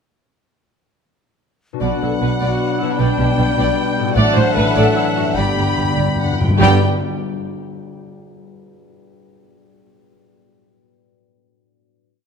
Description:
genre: cinematic, heroic adventure film score.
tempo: 95-103 BPM (dotted quarters).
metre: 6/8.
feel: straight.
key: G major.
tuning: A4 = 439 Hz.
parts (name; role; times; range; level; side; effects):
concert harp; arpeggios; 1.7-6.8 s; G2 to D5; -25 LUFS; left 9 dB; none.
warm symphonic violin section; melody; 1.8-6.9 s; F#5 to B5; -24 LUFS; left 3 dB; none.
bright clarinet; second line; 1.8-6.8 s; D5 to E5; -29 LUFS; left 3 dB; none.
silver concert flute; second line; 1.8-6.8 s; A5 to B5; -29 LUFS; left 3 dB; none.
warm oboe; second line; 1.8-6.8 s; F#5 to G5; -28 LUFS; right 4 dB; none.
warm symphonic violin section; second line; 1.8-6.9 s; F#4 to G5; -27 LUFS; left 5 dB; none.
warm symphonic viola section; accompaniment; 1.8-6.8 s; D4 to D5; -23 LUFS; right 1 dB; none.
bright trombone section; sustained chords; 1.8-6.8 s; B2 to G3; -26 LUFS; right 6 dB; none.
dark French horn section; sustained chords; 1.8-6.8 s; A3 to D4; -24 LUFS; left 8 dB; none.
warm symphonic cello section; bass; 1.8-6.8 s; G2 to B2; -21 LUFS; right 3 dB; none.
warm symphonic double bass section; bass; 1.8-6.8 s; G1 to B1; -21 LUFS; right 4 dB; none.
timpani; percussion; 5.4-6.8 s; G2; -22 LUFS; left 1 dB; none.
room: moderate concert hall reverb, RT60 2.1 s.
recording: close, detailed microphones.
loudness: -14 LUFS.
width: side -6 dB against mid.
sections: 1.8-6.6 theme; 6.6-7.9 final chord.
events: slowing down 3.6-6.6; timpani fill 5.4-6.6.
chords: 1.8 Bm; 4.2 Dadd9/A; 5.4 G.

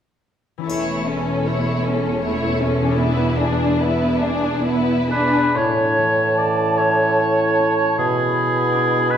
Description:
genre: classical, slow romantic movement for symphony orchestra.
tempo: 42-54 BPM (dotted quarters).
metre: 6/8.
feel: rubato.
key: A major.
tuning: A4 = 440 Hz.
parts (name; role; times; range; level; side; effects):
concert harp; arpeggios; 0.6-9.2 s; A2 to C#5; -27 LUFS; left 4 dB; none.
warm studio violin section; melody; 0.7-5.6 s; G#4 to C#5; -28 LUFS; left 4 dB; none.
warm studio violin section; second line; 0.7-5.6 s; C#4 to E4; -24 LUFS; left 2 dB; none.
rich studio viola section; accompaniment; 0.7-5.6 s; A3 to D4; -23 LUFS; right 1 dB; none.
rich studio cello section; bass; 0.7-5.3 s; E2; -26 LUFS; right 2 dB; none.
warm studio double bass section; bass; 0.7-5.3 s; E1; -27 LUFS; right 2 dB; none.
triangle; percussion; 0.7-2.2 s; none; -38 LUFS; left 2 dB; none.
warm oboe; second line; 5.1-9.2 s; G#4 to D5; -19 LUFS; right 1 dB; none.
flute section; second line; 5.5-9.2 s; A5 to B5; -24 LUFS; right 1 dB; none.
warm bassoon; accompaniment; 5.5-9.2 s; A2 to B2; -22 LUFS; right 3 dB; none.
mellow clarinet; second line; 5.6-9.2 s; E4; -27 LUFS; left 3 dB; none.
room: wet recital hall reverb, RT60 1.8 s.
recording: heard from further back in the room.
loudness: -16 LUFS.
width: side -9 dB against mid.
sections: 0.7-5.6 A section; 5.6-9.2 B section.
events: none.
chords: 0.7 A/E; 3.0 E7; 5.6 A; 8.0 E7/B.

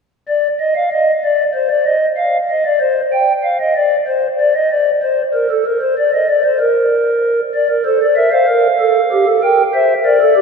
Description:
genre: classical, baroque-style 4-part fugue for pipe organ.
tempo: 64 BPM (dotted quarters).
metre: 12/8.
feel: straight.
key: unclear.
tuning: A4 = 441 Hz.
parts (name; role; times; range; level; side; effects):
pipe organ, stopped flute; solo; 0.3-10.4 s; G4 to G5; -12 LUFS; equal; none.
room: wet church reverb, RT60 3.5 s.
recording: none.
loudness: -12 LUFS.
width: side -5 dB against mid.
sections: 0.0-10.4 A section.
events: none.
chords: 0.0 N.C.; 7.5 Dm; 9.4 Gm.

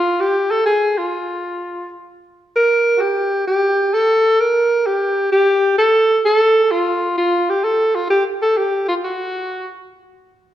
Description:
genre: jazz.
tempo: 130 BPM.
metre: 4/4.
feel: swing 67% on 8ths.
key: unclear.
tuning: A4 = 441 Hz.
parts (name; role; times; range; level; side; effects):
clear alto saxophone; solo; 0.0-9.8 s; F4 to Bb4; -14 LUFS; equal; none.
room: wet recital hall reverb, RT60 1.7 s.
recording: recorded in a church or concert hall.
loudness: -14 LUFS.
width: side -12 dB against mid.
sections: 0.0-9.9 A section.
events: none.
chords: none.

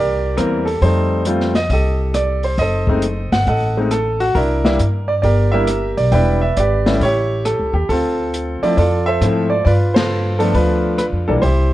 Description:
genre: jazz piano trio.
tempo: 136 BPM.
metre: 4/4.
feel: swing 67% on 8ths.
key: unclear.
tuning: A4 = 441 Hz.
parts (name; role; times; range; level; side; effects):
clear concert grand piano; melody; 0.0-11.7 s; E3 to G5; -17 LUFS; right 1 dB; none.
upright bass; bass; 0.0-11.7 s; E1 to Ab2; -18 LUFS; equal; none.
open jazz drum kit; drums; 0.4-11.6 s; hi-hat, kick drum, ride cymbal, rim click, snare drum; -22 LUFS; left 1 dB; none.
room: light reverb.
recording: worn, warbling old tape, cassette tape, warbly pitch drift.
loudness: -14 LUFS.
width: side -15 dB against mid.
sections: 0.0-11.7 A section.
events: band accent 9.9.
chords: 0.0 C9; 0.8 F9; 2.6 F#dim7; 4.4 C9; 6.1 Em7; 7.0 A7; 7.9 Dm7; 9.7 G9.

